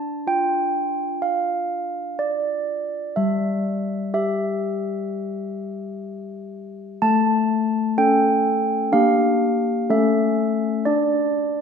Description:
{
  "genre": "classical, tune for handbells",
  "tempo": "62 BPM",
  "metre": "4/4",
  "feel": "straight",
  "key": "D minor",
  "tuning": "A4 = 442 Hz",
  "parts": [
    { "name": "handbells", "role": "solo", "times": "0.0-11.6 s", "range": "G3 to A5", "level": "-20 LUFS", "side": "equal", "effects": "none" }
  ],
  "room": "wet concert hall reverb, RT60 1.6 s",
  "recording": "none",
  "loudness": "-19 LUFS",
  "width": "side -6 dB against mid",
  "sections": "0.0-11.6 A section",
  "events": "none",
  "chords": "0.0 Dm; 3.2 N.C.; 7.0 A; 8.9 Gm/Bb; 9.9 A; 10.9 N.C.",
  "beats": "0.28 1.26 2.22 | 3.18 4.14 5.08 6.03 | 7.01 7.97 8.93 9.89 | 10.87"
}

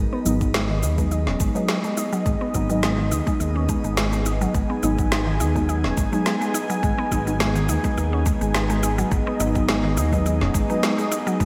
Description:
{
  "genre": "organic downtempo",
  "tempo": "105 BPM",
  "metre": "4/4",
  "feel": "swing 54% on 16ths",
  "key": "G# minor",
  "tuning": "A4 = 440 Hz",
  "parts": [
    { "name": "warm analog pad", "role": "sustained chords", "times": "0.0-11.4 s", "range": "B3 to G#5", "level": "-30 LUFS", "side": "equal", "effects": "chorus, sidechain pumping, shimmer reverb" },
    { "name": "mallet-like synth pluck", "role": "arpeggios", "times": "0.0-11.4 s", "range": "D#3 to D#4", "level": "-29 LUFS", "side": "equal", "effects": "chorus, delay, shimmer reverb" },
    { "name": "smooth synth bass", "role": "bass", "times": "0.0-11.4 s", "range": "D#1 to D#2", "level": "-26 LUFS", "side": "equal", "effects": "sidechain pumping" },
    { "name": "deep mellow chord stab", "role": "accompaniment", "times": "0.2-10.9 s", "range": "F#3 to D#4", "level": "-30 LUFS", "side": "equal", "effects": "chorus, sidechain pumping, delay, shimmer reverb" },
    { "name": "electronic cabasa and snare drum", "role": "drums", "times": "0.3-11.4 s", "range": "none", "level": "-30 LUFS", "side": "equal", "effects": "studio reverb, gated reverb" },
    { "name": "electronic kick drum", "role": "drums", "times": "0.4-11.4 s", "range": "none", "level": "-28 LUFS", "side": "equal", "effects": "studio reverb" },
    { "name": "udu", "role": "percussion", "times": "10.4-10.5 s", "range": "none", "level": "-30 LUFS", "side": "equal", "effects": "none" }
  ],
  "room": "moderate lush hall reverb, RT60 2.5 s",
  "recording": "bright 1980s-style digital production",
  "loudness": "-22 LUFS",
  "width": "mono",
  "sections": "0.0-11.4 A section",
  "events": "filter sweep on synth pluck 0.0-11.4; filter sweep on synth stab 0.0-11.4",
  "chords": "0.0 G#m",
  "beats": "0.55 1.12 1.69 | 2.26 2.83 3.40 3.97 | 4.54 5.12 5.69 6.26 | 6.83 7.40 7.97 8.54 | 9.12 9.69 10.26 10.83 | 11.40"
}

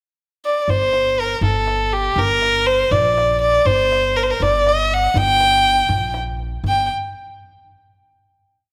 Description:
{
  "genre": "Persian modal ensemble",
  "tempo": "80 BPM (dotted quarters)",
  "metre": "6/8",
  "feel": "straight",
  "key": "G avaz esfahan",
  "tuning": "A4 = 440 Hz",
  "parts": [
    { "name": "rich violin", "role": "melody", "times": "0.5-6.9 s", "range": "G4 to G5", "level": "-18 LUFS", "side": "equal", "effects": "none" },
    { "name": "upright bass", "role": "bass", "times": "0.7-6.9 s", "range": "G1 to Bb1", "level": "-27 LUFS", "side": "equal", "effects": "none" },
    { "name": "tombak", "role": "percussion", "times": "0.7-6.9 s", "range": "none", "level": "-27 LUFS", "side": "equal", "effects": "none" }
  ],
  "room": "light reverb",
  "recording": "none",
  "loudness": "-17 LUFS",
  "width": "mono",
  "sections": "0.0-0.7 pickup bar; 0.7-6.7 A section; 6.7-8.1 final note",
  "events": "none",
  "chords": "none",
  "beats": "| 0.69 1.44 | 2.18 2.93 | 3.67 4.42 | 5.16 5.91 | 6.65"
}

